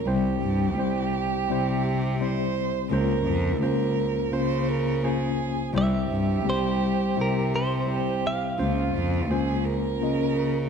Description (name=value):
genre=acoustic folk-pop ballad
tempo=84 BPM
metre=4/4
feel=straight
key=unclear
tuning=A4 = 440 Hz
part: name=rich violin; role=second line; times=0.0-10.7 s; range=F4 to C5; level=-30 LUFS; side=right 9 dB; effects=none
part: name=mellow tine electric piano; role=accompaniment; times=0.0-10.7 s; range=C2 to Eb5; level=-27 LUFS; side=left 4 dB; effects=medium stereo tremolo
part: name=warm cello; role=bass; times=0.0-10.7 s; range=C2 to Db3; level=-27 LUFS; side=equal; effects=none
part: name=direct-recorded clean electric guitar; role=melody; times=5.8-8.9 s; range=Bb4 to F5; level=-30 LUFS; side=right 1 dB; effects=tremolo
room=light reverb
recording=dark, warm production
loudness=-23 LUFS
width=side -6 dB against mid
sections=0.0-10.7 A section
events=none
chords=0.1 C; 2.9 Bbmadd9/Db; 5.7 C; 8.6 Bbmadd9/Db